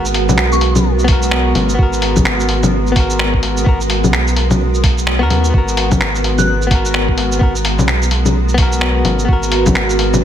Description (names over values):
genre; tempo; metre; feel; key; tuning
future garage; 128 BPM; 4/4; swing 61% on 16ths; G# minor; A4 = 440 Hz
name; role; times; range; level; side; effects
direct-recorded clean electric guitar; accompaniment; 0.0-10.2 s; B3 to A#4; -20 LUFS; left 3 dB; sidechain pumping, tape echo
granular cloud pad; sustained chords; 0.0-10.2 s; G#3 to A#4; -20 LUFS; right 2 dB; built-in reverb, sidechain pumping
warm sub bass; bass; 0.0-10.2 s; G#1 to D#2; -17 LUFS; equal; sidechain pumping
lo-fi sampler-style drum kit; drums; 0.1-10.2 s; bongos, finger snaps, hi-hat, shaker; -17 LUFS; left 2 dB; none
soft synth bell; melody; 0.5-0.8, 6.4-6.6 s; C#6 to F#6; -26 LUFS; left 2 dB; chorus, phaser, ping-pong delay
electronic kick drum; drums; 1.1-9.7 s; none; -15 LUFS; equal; none
room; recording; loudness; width
light reverb; none; -12 LUFS; side -10 dB against mid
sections
0.0-10.2 A section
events
none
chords
0.0 G#m9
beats
0.38 0.85 1.32 | 1.79 2.26 2.73 3.19 | 3.66 4.13 4.60 5.07 | 5.54 6.01 6.47 6.94 | 7.41 7.88 8.35 8.82 | 9.29 9.76 10.22